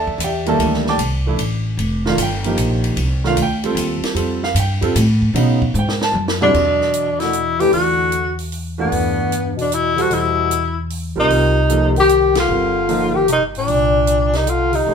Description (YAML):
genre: modal jazz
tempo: 151 BPM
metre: 3/4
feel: swing 66% on 8ths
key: E phrygian from 6.5 s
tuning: A4 = 439 Hz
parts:
  - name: warm grand piano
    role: accompaniment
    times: 0.0-14.9 s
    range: C#3 to D6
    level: -20 LUFS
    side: right 3 dB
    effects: none
  - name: upright bass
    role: bass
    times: 0.0-14.9 s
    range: F1 to B2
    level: -21 LUFS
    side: equal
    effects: none
  - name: compact cocktail drum kit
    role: drums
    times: 0.1-14.8 s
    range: crash cymbal, hi-hat, kick drum, ride cymbal, snare drum, toms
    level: -26 LUFS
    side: equal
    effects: none
  - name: warm tenor saxophone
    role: melody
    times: 6.4-14.9 s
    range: B3 to G4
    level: -16 LUFS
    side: left 1 dB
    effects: none
  - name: breathy bass clarinet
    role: second line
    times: 6.4-14.9 s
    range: G2 to E3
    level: -22 LUFS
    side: left 4 dB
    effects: none
room: wet studio reverb, RT60 0.8 s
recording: band playing live in one room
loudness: -15 LUFS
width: side -6 dB against mid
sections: 0.0-6.5 A section; 6.5-14.9 B section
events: drum fill 5.7-6.5; band accent 12.3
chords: 0.0 D9sus4; 1.8 F9sus4; 5.4 B; 6.5 Em9; 11.3 Cm9